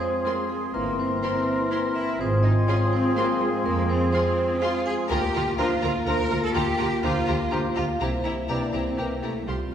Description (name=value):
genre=cinematic, playful, whimsical film cue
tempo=124 BPM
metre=3/4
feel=straight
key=F minor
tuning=A4 = 440 Hz
part: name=vibraphone with medium hard mallets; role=melody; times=0.0-9.7 s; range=G4 to Bb5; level=-31 LUFS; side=right 1 dB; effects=none
part: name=clear oboe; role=second line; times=0.0-9.1 s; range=G4 to Bb4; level=-35 LUFS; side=left 1 dB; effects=none
part: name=dark clarinet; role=second line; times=0.0-9.1 s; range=C4 to D4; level=-34 LUFS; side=left 3 dB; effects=none
part: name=mellow silver concert flute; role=second line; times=0.0-9.1 s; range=Bb5 to C6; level=-33 LUFS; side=left 2 dB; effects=none
part: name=mellow bassoon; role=accompaniment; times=0.0-9.2 s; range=E3 to F3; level=-32 LUFS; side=right 1 dB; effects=none
part: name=dark French horn section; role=sustained chords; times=0.0-9.7 s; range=Ab3 to F4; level=-30 LUFS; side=left 1 dB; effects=none
part: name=rich studio cello section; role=bass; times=0.0-9.7 s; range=G3 to Bb4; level=-30 LUFS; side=right 1 dB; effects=none
part: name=rich studio viola section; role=accompaniment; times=0.2-9.7 s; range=E4 to F4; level=-35 LUFS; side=right 1 dB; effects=none
part: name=rich studio violin section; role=melody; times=0.3-9.6 s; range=Bb5 to C6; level=-36 LUFS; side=left 4 dB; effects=none
part: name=rich studio violin section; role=second line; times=0.3-9.6 s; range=G4 to Bb4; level=-36 LUFS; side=left 3 dB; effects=none
part: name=rich studio double bass section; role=bass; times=0.7-9.7 s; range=G1 to F2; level=-28 LUFS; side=right 1 dB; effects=none
room=wet scoring stage reverb, RT60 1.4 s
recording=heard from further back in the room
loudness=-22 LUFS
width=side -9 dB against mid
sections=0.0-9.7 A section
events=none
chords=0.0 Fm; 0.7 C7/G; 2.2 Fm/Ab; 3.7 Fm; 5.1 Bb/D; 6.6 Gm7/D; 8.0 C7